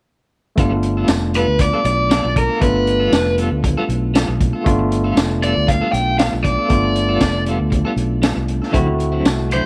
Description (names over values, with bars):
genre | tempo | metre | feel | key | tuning
straight-eighth soul blues | 118 BPM | 4/4 | swing 56% on 16ths | G mixolydian | A4 = 435 Hz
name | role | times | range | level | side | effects
overdriven tine electric piano | accompaniment | 0.6-9.7 s | A3 to F#4 | -24 LUFS | equal | none
clean electric guitar | stabs | 0.6-9.6 s | D3 to A4 | -28 LUFS | equal | tremolo
fingered electric bass | bass | 0.6-9.6 s | F1 to D2 | -23 LUFS | equal | none
crunchy breakbeat drum kit | drums | 0.6-9.6 s | hi-hat, kick drum, snare drum, tambourine | -21 LUFS | equal | none
overdriven electric guitar | melody | 1.4-9.7 s | Bb4 to G5 | -21 LUFS | equal | none
room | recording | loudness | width
light reverb, small room ambience | none | -17 LUFS | mono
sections
0.6-9.7 A section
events
none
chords
0.6 G9; 8.7 D9